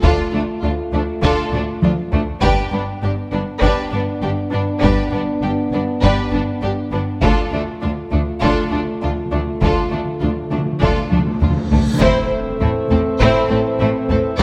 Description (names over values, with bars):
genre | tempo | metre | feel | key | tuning
cinematic, epic orchestral film score | 100 BPM | 4/4 | straight | D dorian | A4 = 440 Hz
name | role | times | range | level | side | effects
warm symphonic violin section | melody | 0.0-14.4 s | D4 to D5 | -27 LUFS | equal | none
rich studio violin section | second line | 0.0-14.2 s | A3 to G4 | -28 LUFS | equal | none
warm symphonic viola section | accompaniment | 0.0-14.4 s | B3 to D4 | -27 LUFS | equal | none
mellow French horn section | sustained chords | 0.0-14.4 s | A3 to A4 | -26 LUFS | equal | none
rich studio cello section | bass | 0.0-14.4 s | D2 to A2 | -27 LUFS | equal | none
warm symphonic double bass section | bass | 0.0-14.4 s | G1 to D2 | -26 LUFS | equal | none
taiko ensemble | drums | 0.0-14.4 s | none | -23 LUFS | equal | none
timpani | percussion | 7.2-12.0 s | D3 | -27 LUFS | equal | none
reverse cymbal and impact | sound effects | 11.7-14.4 s | none | -34 LUFS | equal | none
pipe organ, principal | sustained chords | 12.0-14.4 s | C4 to E5 | -28 LUFS | equal | none
warm trombone section | sustained chords | 12.0-14.4 s | E3 to A3 | -28 LUFS | equal | none
room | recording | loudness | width
moderate scoring stage reverb, RT60 1.9 s | none | -18 LUFS | mono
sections
0.0-12.0 A section; 12.0-14.4 B section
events
build-up 0.0-12.0; drum fill 1.5-2.4, 11.1-12.0; timpani fill 7.2-12.0; reverse cymbal 11.7-12.0; impact 12.0-14.4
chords
0.0 Dm; 2.4 G; 7.2 Dm; 12.0 Am